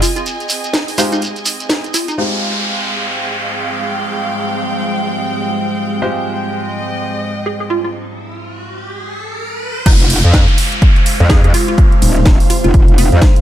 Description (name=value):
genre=bass house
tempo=125 BPM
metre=4/4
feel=swing 59% on 16ths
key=F minor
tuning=A4 = 436 Hz
part: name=hollow square pluck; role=melody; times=0.0-2.3, 7.5-13.4 s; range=C4 to Ab4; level=-22 LUFS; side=right 1 dB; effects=ensemble chorus, tape echo
part: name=house drum kit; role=drums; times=0.0-2.2, 9.9-13.4 s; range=crash cymbal, hi-hat, ride cymbal, snare drum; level=-19 LUFS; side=right 1 dB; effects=overdrive
part: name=shekere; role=percussion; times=0.0-2.2 s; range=none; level=-21 LUFS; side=right 2 dB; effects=none
part: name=warm chamber string section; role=texture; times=0.0-13.4 s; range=Ab3 to Ab5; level=-23 LUFS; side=right 2 dB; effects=sidechain pumping
part: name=bright baby grand piano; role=stabs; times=1.0-9.8 s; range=Ab3 to C5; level=-23 LUFS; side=equal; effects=vintage 12-bit sampler grit, sidechain pumping, low-pass filter, tape echo
part: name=deep dark ambient pad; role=sustained chords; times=3.5-13.4 s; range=Ab3 to C5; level=-23 LUFS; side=left 1 dB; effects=chorus, built-in reverb, sidechain pumping
part: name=downlifter and riser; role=sound effects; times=2.2-13.4 s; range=none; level=-22 LUFS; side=equal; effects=none
part: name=metallic wobble bass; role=bass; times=9.9-13.2 s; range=Eb1 to F2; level=-12 LUFS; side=equal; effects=chorus, overdrive, sidechain pumping
part: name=electronic kick drum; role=drums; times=9.9-13.3 s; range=none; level=-11 LUFS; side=equal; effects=overdrive
room=digital ambience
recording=none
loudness=-12 LUFS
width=side -12 dB against mid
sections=0.0-2.2 A section; 2.2-9.9 B section; 9.9-13.4 C section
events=break 0.3-2.2, 7.9-9.9; filter sweep on grand piano 2.2-9.9; riser 7.7-9.9; drop 9.9-13.4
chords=0.0 Fm (rootless); 2.2 Fmadd9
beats=| 0.26 0.74 1.22 1.70 | 2.18 2.66 3.14 3.62 | 4.10 4.58 5.06 5.54 | 6.02 6.50 6.98 7.46 | 7.94 8.42 8.90 9.38 | 9.86 10.34 10.82 11.30 | 11.78 12.26 12.74 13.22